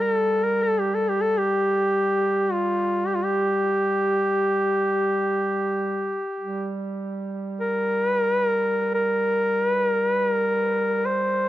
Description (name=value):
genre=caucasian folk, Caucasian lament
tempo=free time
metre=none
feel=none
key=G minor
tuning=A4 = 440 Hz
part: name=clear duduk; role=melody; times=0.0-11.5 s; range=F4 to C5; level=-21 LUFS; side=left 1 dB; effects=tape echo
part: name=breathy duduk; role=drone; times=0.0-11.5 s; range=G3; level=-30 LUFS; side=right 4 dB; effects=stereo widening
room=small room reverb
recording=dry, close 1970s-style studio recording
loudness=-21 LUFS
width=side -14 dB against mid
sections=0.0-11.5 A section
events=none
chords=none